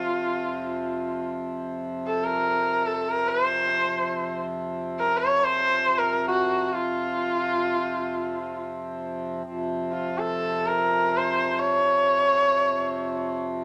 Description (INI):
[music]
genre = indian classical, Hindustani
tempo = free time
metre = none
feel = none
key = F major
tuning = A4 = 442 Hz
[part]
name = warm sarangi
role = melody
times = 0.0-13.3 s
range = F4 to Db5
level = -26 LUFS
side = equal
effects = none
[part]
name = hand-pumped harmonium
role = drone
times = 0.0-13.6 s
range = F2 to C3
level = -32 LUFS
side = equal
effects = none
[sound]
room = wet studio ambience, RT60 0.5 s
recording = none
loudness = -25 LUFS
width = mono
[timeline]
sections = 0.0-9.4 A section; 9.4-13.6 A section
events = none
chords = none